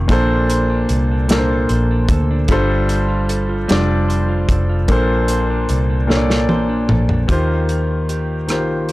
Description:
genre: slow six-eight R&B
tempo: 50 BPM (dotted quarters)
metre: 6/8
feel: straight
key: unclear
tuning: A4 = 440 Hz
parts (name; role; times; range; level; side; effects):
- clean electric guitar; second line; 0.0-8.9 s; Eb3 to C5; -25 LUFS; right 4 dB; analog delay
- clear grand piano; accompaniment; 0.0-8.9 s; Bb2 to D5; -18 LUFS; left 1 dB; none
- vintage muted fingered electric bass; bass; 0.0-8.9 s; F1 to Eb2; -18 LUFS; equal; tube saturation
- warm soul drum kit; drums; 0.1-8.9 s; hi-hat, kick drum, rim click, snare drum, toms; -19 LUFS; equal; none
room: studio ambience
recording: dry, gritty hardware recording, transformer saturation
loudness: -14 LUFS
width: side -18 dB against mid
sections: 0.0-7.3 A section; 7.3-8.9 B section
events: drum fill 6.1-7.3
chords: 0.1 Bbmaj9; 2.5 G9sus4; 4.9 Bbmaj9; 7.3 Eb69

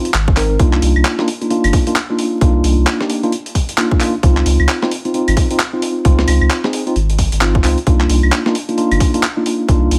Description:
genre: UK garage, two-step garage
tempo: 132 BPM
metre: 4/4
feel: swing 60% on 16ths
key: C minor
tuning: A4 = 437 Hz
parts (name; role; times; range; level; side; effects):
- mellow tine electric piano; stabs; 0.0-10.0 s; Bb3 to Bb4; -20 LUFS; equal; none
- saturated sub bass; bass; 0.1-10.0 s; G1 to Db2; -17 LUFS; equal; sidechain pumping
- breakbeat sampler-style drum kit; drums; 0.1-10.0 s; claves, handclaps, hi-hat, snare drum; -22 LUFS; equal; small room reverb
- electronic kick drum; drums; 0.3-9.8 s; none; -17 LUFS; equal; small room reverb
room: little or no reverb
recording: vinyl crackle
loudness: -15 LUFS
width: mono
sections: 0.0-10.0 A section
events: none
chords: 0.0 Dbmaj9 (rootless); 0.6 Cm11; 4.2 Dbmaj9; 7.9 Cm11

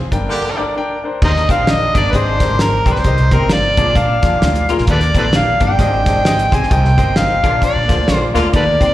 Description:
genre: uptempo 1960s-style soul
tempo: 131 BPM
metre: 4/4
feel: swing 59% on 8ths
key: Bb mixolydian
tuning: A4 = 440 Hz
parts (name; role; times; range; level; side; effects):
- warm baby grand piano; accompaniment; 0.0-8.9 s; G2 to G5; -21 LUFS; left 3 dB; slapback echo
- upright bass; bass; 0.1-8.9 s; G1 to Bb2; -17 LUFS; equal; none
- cloth-damped thuddy drum kit; drums; 0.1-8.9 s; crash cymbal, hi-hat, kick drum, snare drum; -17 LUFS; equal; none
- clear horn section; second line; 0.3-0.6, 7.4-8.5 s; D3 to G4; -22 LUFS; right 1 dB; slapback echo
- overdriven harmonica; melody; 1.2-8.9 s; A4 to Ab5; -16 LUFS; equal; slapback echo
- electric guitar through a small old amp; riff; 1.5-8.9 s; C4 to F4; -23 LUFS; left 4 dB; ensemble chorus, slapback echo
room: light reverb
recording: live gig heard through the venue's PA, recital hall reverb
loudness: -12 LUFS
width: side -14 dB against mid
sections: 0.0-1.2 A section; 1.2-8.9 B section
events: band accent 0.0-1.2, 6.7-8.5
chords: 0.1 Gm; 1.2 Ebmaj7; 2.1 Abmaj7; 3.1 Cm7; 3.7 Bb7; 4.9 Ebmaj7; 5.8 Abmaj7; 6.7 Cm7; 7.4 Bb7

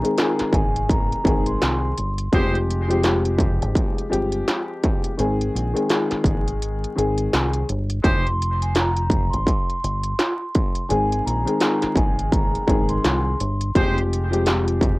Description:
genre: hip hop, boom-bap hip-hop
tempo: 84 BPM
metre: 4/4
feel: swing 59% on 16ths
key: F minor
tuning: A4 = 440 Hz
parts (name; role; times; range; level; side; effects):
- vibraphone with soft mallets; melody; 0.0-2.3, 8.0-13.7 s; Ab5 to C6; -27 LUFS; equal; high-pass filter, low-pass filter, cassette tape, analog delay
- dark upright piano; accompaniment; 0.0-15.0 s; Eb3 to Ab4; -23 LUFS; left 2 dB; high-pass filter, low-pass filter, cassette tape
- industrial drum kit; drums; 0.0-15.0 s; hi-hat, kick drum, snare drum; -21 LUFS; equal; distortion, cassette tape
- deep dub fingered electric bass; bass; 0.4-15.0 s; F1 to C2; -24 LUFS; equal; none
- clear trumpet section; stabs; 2.3-2.6, 8.0-8.3, 13.8-14.0 s; Ab3 to C5; -28 LUFS; right 1 dB; high-pass filter, low-pass filter, cassette tape, analog delay
room: little or no reverb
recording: home recording on cassette, vinyl crackle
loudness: -19 LUFS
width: side -22 dB against mid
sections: 0.0-8.0 A section; 8.0-15.0 A section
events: kick muted 6.6-8.0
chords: 0.0 Ab; 2.3 Fmadd9; 5.2 Ab; 8.0 Fsus2; 10.9 Ab; 13.8 Fmadd9

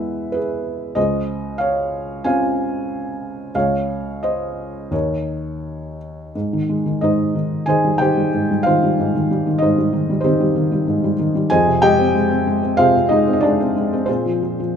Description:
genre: classical, lyrical solo piano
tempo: 80-96 BPM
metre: 4/4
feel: rubato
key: Ab lydian from 6.3 s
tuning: A4 = 440 Hz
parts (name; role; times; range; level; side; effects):
- felt-muted upright piano; solo; 0.0-14.8 s; Db2 to Ab5; -16 LUFS; equal; none
room: moderate recital hall reverb, RT60 1.4 s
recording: minimal, uncompressed stereo recording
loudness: -16 LUFS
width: side -7 dB against mid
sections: 0.0-6.3 A section; 6.3-14.8 B section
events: none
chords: 0.0 Emaj7; 1.0 Dbmaj7; 4.9 Eb5; 6.3 Abmaj7; 11.5 Fm7; 14.1 Bbsus2

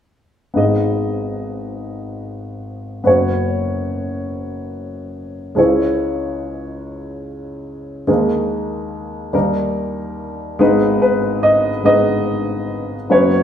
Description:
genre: folk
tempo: 48 BPM (dotted quarters)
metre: 6/8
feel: straight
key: G# minor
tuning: A4 = 440 Hz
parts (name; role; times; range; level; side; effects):
- dark upright piano; melody; 0.5-13.4 s; F#1 to D#5; -16 LUFS; equal; none
room: wet stone room reverb, RT60 1.2 s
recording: band playing live in one room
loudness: -15 LUFS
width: side -9 dB against mid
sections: 0.6-10.6 A section; 10.6-13.4 B section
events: none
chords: 0.6 G#m; 3.1 F#sus4; 5.6 C#m; 8.1 D#sus4; 9.3 D#; 10.6 G#m

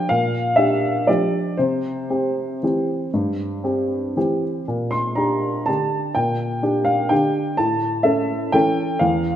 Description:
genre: classical, piano waltz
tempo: 113-132 BPM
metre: 3/4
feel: rubato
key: unclear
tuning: A4 = 445 Hz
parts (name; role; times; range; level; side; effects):
- warm upright piano; solo; 0.0-9.4 s; E2 to C6; -18 LUFS; equal; none
room: moderate recital hall reverb, RT60 1.7 s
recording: none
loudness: -18 LUFS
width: side -10 dB against mid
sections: 0.0-9.4 A section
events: none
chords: 0.0 Gm7/Bb; 1.6 C; 4.7 Gm/Bb; 7.6 A

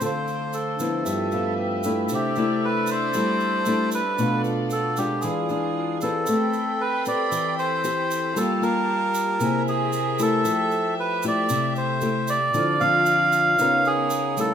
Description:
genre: bossa nova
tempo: 115 BPM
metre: 4/4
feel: straight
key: C major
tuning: A4 = 440 Hz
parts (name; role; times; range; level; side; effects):
- melodica; melody; 0.0-14.5 s; G4 to F5; -23 LUFS; right 1 dB; none
- nylon-string guitar; accompaniment; 0.0-14.5 s; G2 to B4; -26 LUFS; left 3 dB; none
- vibraphone with medium mallets; accompaniment; 0.0-14.5 s; C4 to F6; -30 LUFS; right 4 dB; none
- clear studio string section; sustained chords; 0.0-14.5 s; A3 to B5; -32 LUFS; left 2 dB; none
- egg shaker; percussion; 0.0-14.5 s; none; -36 LUFS; right 6 dB; none
room: light reverb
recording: minimal, uncompressed stereo recording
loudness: -20 LUFS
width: side -8 dB against mid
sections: 0.0-6.3 A section; 6.3-14.5 B section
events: vibraphone fill 1.1-2.1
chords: 0.0 Dm7; 1.1 G13; 2.1 C69; 4.2 Bm7b5; 5.2 E7b9; 6.3 Am9; 8.4 Gm9; 9.4 C7b13; 10.4 Fmaj9; 12.5 Dm9; 13.6 Db13

